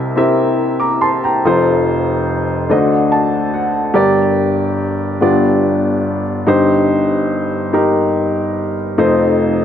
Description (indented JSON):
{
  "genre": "gospel",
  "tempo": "48 BPM (dotted quarters)",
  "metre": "6/8",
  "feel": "straight",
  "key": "unclear",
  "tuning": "A4 = 439 Hz",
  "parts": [
    { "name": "warm upright piano", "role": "solo", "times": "0.0-9.6 s", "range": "F1 to D6", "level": "-12 LUFS", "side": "left 1 dB", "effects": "none" }
  ],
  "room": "moderate echo chamber reverb, RT60 2.1 s",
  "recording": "none",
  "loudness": "-13 LUFS",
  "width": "side -9 dB against mid",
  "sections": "0.0-9.6 A section",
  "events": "upright piano fill 2.7-4.0",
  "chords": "0.0 C7; 1.4 F; 2.7 D7b9; 4.0 Gm; 5.2 G7; 6.5 Cm/G; 9.0 F7",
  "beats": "0.16 | 1.43 2.69 | 3.96 5.22 | 6.48 7.75 | 9.01"
}